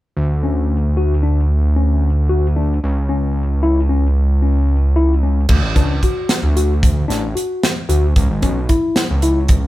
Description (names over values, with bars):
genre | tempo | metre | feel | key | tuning
progressive instrumental, band music in an uneven meter | 225 BPM (eighths) | 5/8 | straight | D major | A4 = 440 Hz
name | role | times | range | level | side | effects
fat analog bass | bass | 0.2-9.7 s | G#1 to D2 | -15 LUFS | equal | none
tine electric piano | arpeggios | 0.4-9.4 s | C#4 to F#4 | -21 LUFS | left 3 dB | overdrive
modern studio drum kit | drums | 5.5-9.6 s | crash cymbal, hi-hat, kick drum, snare drum | -16 LUFS | equal | none
room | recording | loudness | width
light reverb | band playing live in one room | -14 LUFS | side -16 dB against mid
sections
0.2-5.5 A section; 5.5-9.7 B section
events
none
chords
0.2 Dmaj7; 2.8 C#m; 5.5 Dmaj7; 8.2 C#m7